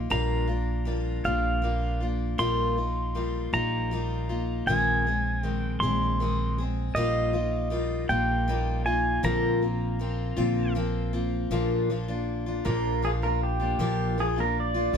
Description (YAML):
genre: acoustic folk duo or small band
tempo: 53 BPM (dotted quarters)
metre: 6/8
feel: straight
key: Bb mixolydian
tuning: A4 = 440 Hz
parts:
  - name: picked steel-string acoustic guitar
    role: accompaniment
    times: 0.0-15.0 s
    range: Bb2 to Ab4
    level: -29 LUFS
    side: left 3 dB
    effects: none
  - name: upright bass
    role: bass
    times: 0.0-15.0 s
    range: Bb1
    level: -29 LUFS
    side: right 1 dB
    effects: none
  - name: pedal steel guitar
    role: melody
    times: 0.1-10.7 s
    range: Eb5 to C6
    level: -29 LUFS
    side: right 1 dB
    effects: none
  - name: pedal steel guitar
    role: second line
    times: 12.7-15.0 s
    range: G4 to D5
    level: -28 LUFS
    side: right 2 dB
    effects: none
room: little or no reverb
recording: none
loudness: -24 LUFS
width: side -7 dB against mid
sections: 0.0-11.5 A section; 11.5-15.0 B section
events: pedal steel guitar solo 11.5-15.0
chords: 0.1 Gm7/Bb; 2.4 Ebadd9/Bb; 4.7 Ab/Bb; 7.0 Ebadd9/Bb; 9.2 Bbadd9; 11.5 Bb